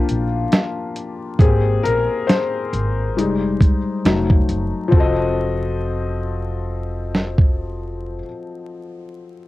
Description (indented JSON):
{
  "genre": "lo-fi hip hop",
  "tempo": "68 BPM",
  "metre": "4/4",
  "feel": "swing 58% on 16ths",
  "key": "unclear",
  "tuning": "A4 = 441 Hz",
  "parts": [
    { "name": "felt-muted upright piano", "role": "accompaniment", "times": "0.0-9.5 s", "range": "F3 to Eb5", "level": "-22 LUFS", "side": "left 4 dB", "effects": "cassette tape, low-pass filter" },
    { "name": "upright bass", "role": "bass", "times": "0.1-8.2 s", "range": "F1 to Bb1", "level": "-23 LUFS", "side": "equal", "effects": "none" },
    { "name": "dusty soul sampler-style drum kit", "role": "drums", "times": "0.1-7.6 s", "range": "hi-hat, kick drum, snare drum", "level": "-15 LUFS", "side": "equal", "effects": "vintage 12-bit sampler grit, cassette tape" }
  ],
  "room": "light reverb",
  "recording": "home recording on cassette, vinyl crackle",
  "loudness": "-16 LUFS",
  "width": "side -17 dB against mid",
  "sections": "0.0-4.9 A section; 4.9-8.5 B section",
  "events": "felt piano solo 0.0-4.9",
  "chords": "0.0 C7sus4 (rootless); 1.4 Abmaj7; 3.2 Fm9; 4.0 F7b9",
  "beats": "0.51 | 1.39 2.27 3.16 4.04 | 4.92 5.80 6.69 7.57"
}